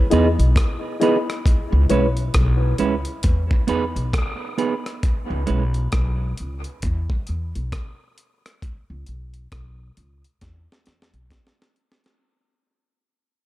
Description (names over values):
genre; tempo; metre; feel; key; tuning
dub reggae; 67 BPM; 4/4; swing 60% on 16ths; unclear; A4 = 440 Hz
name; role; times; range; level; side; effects
semi-hollow electric guitar; accompaniment; 0.1-5.6 s; G#3 to B4; -24 LUFS; right 5 dB; dub echo
mellow reed electric piano; stabs; 0.1-2.1 s; E4 to D#5; -25 LUFS; left 4 dB; fast tremolo, dub echo
upright bass; bass; 0.1-11.3 s; B1 to E2; -21 LUFS; equal; none
breakbeat sampler-style drum kit; drums; 0.1-12.3 s; hi-hat, kick drum, rim click, snare drum; -22 LUFS; equal; none
room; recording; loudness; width
light reverb, digital ambience; dark, warm production; -19 LUFS; side -16 dB against mid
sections
0.0-12.2 A section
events
fade-out 0.0-12.2; break 1.5-12.2; drum fill 10.4-12.2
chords
0.0 Emaj7; 1.5 C#m7; 3.2 Emaj7; 5.0 C#7(no3); 6.8 E5; 8.6 Bsus2; 10.4 E5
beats
0.56 | 1.45 2.35 3.24 4.14 | 5.03 5.93 6.83 7.72 | 8.62 9.52 10.41 11.31